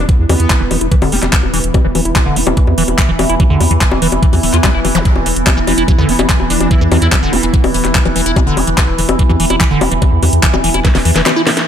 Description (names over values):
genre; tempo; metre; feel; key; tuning
psychedelic trance; 145 BPM; 4/4; straight; unclear; A4 = 440 Hz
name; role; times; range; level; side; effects
metallic wobble bass; second line; 0.0-1.3, 6.0-7.2 s; G3 to E4; -27 LUFS; left 3 dB; wide subtle chorus, sidechain pumping, high-pass filter, dub echo
overtone-sweeping drone; sustained chords; 0.1-11.7 s; E3; -21 LUFS; right 1 dB; chorus, built-in reverb, phaser, sidechain pumping
round analog bass; bass; 0.0-11.2 s; D1 to E2; -16 LUFS; equal; none
deep dark ambient pad; texture; 0.0-11.7 s; B3 to B5; -20 LUFS; right 1 dB; chorus, built-in reverb, sidechain pumping
liquid acid bass; riff; 0.1-11.5 s; D3 to F4; -18 LUFS; moving between left 5 dB and right 5 dB; phaser, auto-pan, sidechain pumping, dub echo
electronic kick drum; drums; 0.1-10.9 s; none; -12 LUFS; equal; small room ambience
garage drum kit; drums; 0.1-11.7 s; bongos, handclaps, hi-hat, snare drum; -16 LUFS; left 3 dB; low-pass filter on perc, small room ambience, low-pass filter on hats, low-pass filter on snare
zap; sound effects; 5.0-5.1 s; none; -25 LUFS; right 1 dB; none
room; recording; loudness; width
light reverb; none; -10 LUFS; side -9 dB against mid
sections
0.0-11.7 A section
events
drum fill 10.8-11.7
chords
0.0 E5